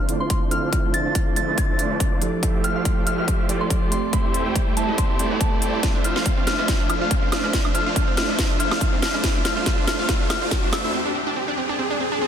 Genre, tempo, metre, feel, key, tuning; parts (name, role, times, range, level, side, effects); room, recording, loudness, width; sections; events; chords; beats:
future bass; 141 BPM; 4/4; swing 54% on 16ths, half-time; D minor; A4 = 438 Hz
mellow tine electric piano; accompaniment; 0.0-5.9 s; D3 to A4; -28 LUFS; right 5 dB; sidechain pumping, digital delay
airy breathy pad; sustained chords; 0.0-10.9 s; E2 to E5; -34 LUFS; left 1 dB; chorus, sidechain pumping
supersaw chords; riff; 0.0-10.9 s; A3 to G5; -26 LUFS; right 1 dB; sidechain pumping, low-pass filter, digital delay
riser; sound effects; 3.8-12.3 s; -31 LUFS; equal
trap drum kit; drums; 0.1-10.8 s; hi-hat, snare drum, woodblock; -26 LUFS; equal
soft synth bell; melody; 0.2-10.9 s; A5 to A6; -28 LUFS; left 1 dB; chorus, sidechain pumping, tape echo
electronic kick drum; drums; 0.3-10.6 s; -23 LUFS; equal; overdrive
wide unison pluck; arpeggios; 5.8-12.3 s; C4 to F4; -30 LUFS; right 2 dB; sidechain pumping, digital delay
light reverb; dense, heavily limited modern master; -19 LUFS; side -8 dB against mid
0.0-12.3 A section
build-up 0.0-12.3; filter sweep on supersaw synth 0.0-12.3; riser 3.8-12.3; drum fill 5.8-10.9; break 10.9-12.3
0.0 Dm9; 2.2 Fmaj9; 3.9 Am7/E; 5.8 Dm9; 9.0 Fmaj9; 10.7 Am7/E
0.30 | 0.73 1.15 1.58 2.00 | 2.43 2.85 3.28 3.71 | 4.13 4.56 4.98 5.41 | 5.83 6.26 6.68 7.11 | 7.54 7.96 8.39 8.81 | 9.24 9.66 10.09 10.51 | 10.94 11.37 11.79 12.22